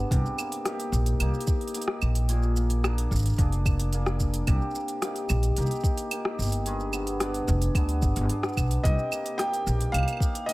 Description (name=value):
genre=folktronica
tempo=110 BPM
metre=4/4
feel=straight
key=C minor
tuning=A4 = 444 Hz
part: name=cimbalom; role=arpeggios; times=0.0-10.5 s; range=G2 to Ab4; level=-31 LUFS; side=equal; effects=digital delay
part: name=upright bass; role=bass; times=0.0-10.0 s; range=F1 to D2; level=-25 LUFS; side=equal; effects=none
part: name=electronic kick drum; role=drums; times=0.1-10.3 s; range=none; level=-26 LUFS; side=equal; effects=none
part: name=organic electronic drum kit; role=drums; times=0.1-10.5 s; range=claves, hi-hat, rim click, shaker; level=-33 LUFS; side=equal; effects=none
part: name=felt-muted upright piano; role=melody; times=8.8-10.5 s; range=Eb5 to G5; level=-29 LUFS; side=equal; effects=digital delay
room=light reverb, studio ambience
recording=none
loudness=-24 LUFS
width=side -20 dB against mid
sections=0.1-10.5 A section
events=none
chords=0.1 Cm7; 2.3 Bb7; 4.5 Cm7; 6.7 G(b9); 8.8 Cm7